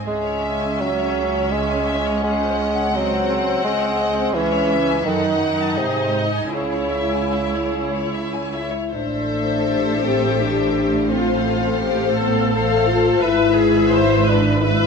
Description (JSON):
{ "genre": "classical, slow romantic movement for symphony orchestra", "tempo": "73-87 BPM", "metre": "3/4", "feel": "rubato", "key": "C# minor, A minor from 8.9 s", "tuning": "A4 = 445 Hz", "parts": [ { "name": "rich symphonic violin section", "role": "second line", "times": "0.0-14.9 s", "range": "G#4 to A5", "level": "-25 LUFS", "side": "left 7 dB", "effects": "none" }, { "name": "warm symphonic violin section", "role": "melody", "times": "0.1-14.9 s", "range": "C#5 to F#5", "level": "-28 LUFS", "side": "left 5 dB", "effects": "none" }, { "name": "mellow bassoon", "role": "accompaniment", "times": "0.1-8.1 s", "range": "B#2 to G#3", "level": "-22 LUFS", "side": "right 2 dB", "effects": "none" }, { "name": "rich symphonic viola section", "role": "accompaniment", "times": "0.1-14.9 s", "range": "B#3 to C5", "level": "-24 LUFS", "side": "equal", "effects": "none" }, { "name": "rich symphonic cello section", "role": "bass", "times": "0.1-14.9 s", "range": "C#2 to A2", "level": "-25 LUFS", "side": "right 4 dB", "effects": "none" }, { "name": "dark French horn section", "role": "sustained chords", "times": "8.5-14.9 s", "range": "A3 to F4", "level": "-20 LUFS", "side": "left 4 dB", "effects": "none" }, { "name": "rich symphonic double bass section", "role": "bass", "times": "8.9-14.9 s", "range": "G#1 to A1", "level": "-26 LUFS", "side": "right 4 dB", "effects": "none" } ], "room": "moderate scoring stage reverb, RT60 1.8 s", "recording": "nothing above 10.9 kHz", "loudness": "-17 LUFS", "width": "side -5 dB against mid", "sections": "0.0-8.9 A section; 8.9-14.9 B section", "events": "none", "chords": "0.1 C#m; 2.2 G#7/C#; 4.3 C#m; 5.1 D#dim/F#; 5.8 G#; 6.5 C#m; 8.9 Am; 11.1 F/A; 13.2 E/G#" }